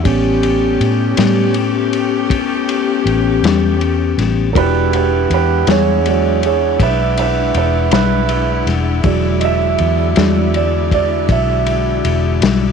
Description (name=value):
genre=slow blues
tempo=53 BPM (dotted quarters)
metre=12/8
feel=straight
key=E mixolydian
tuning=A4 = 440 Hz
part: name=dark baby grand piano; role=accompaniment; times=0.0-12.7 s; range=F#3 to E5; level=-17 LUFS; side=right 14 dB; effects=none
part: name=vintage muted fingered electric bass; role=bass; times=0.0-12.7 s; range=E1 to A2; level=-18 LUFS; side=left 1 dB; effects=none
part: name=clear saxophone section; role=sustained chords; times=0.1-12.7 s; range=G#3 to G4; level=-24 LUFS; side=left 1 dB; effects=none
part: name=mellow tonewheel organ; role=sustained chords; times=0.1-12.7 s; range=D3 to F#5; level=-20 LUFS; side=left 15 dB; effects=slow rotary speaker
part: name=vintage drum kit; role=drums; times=0.1-12.6 s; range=kick drum, ride cymbal, snare drum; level=-19 LUFS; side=left 6 dB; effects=none
room=light reverb, small room ambience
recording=1960s-style stereo with parts hard left and right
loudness=-12 LUFS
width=side -6 dB against mid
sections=0.0-12.7 A section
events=grand piano solo 0.0-12.7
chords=0.1 A7; 4.5 E7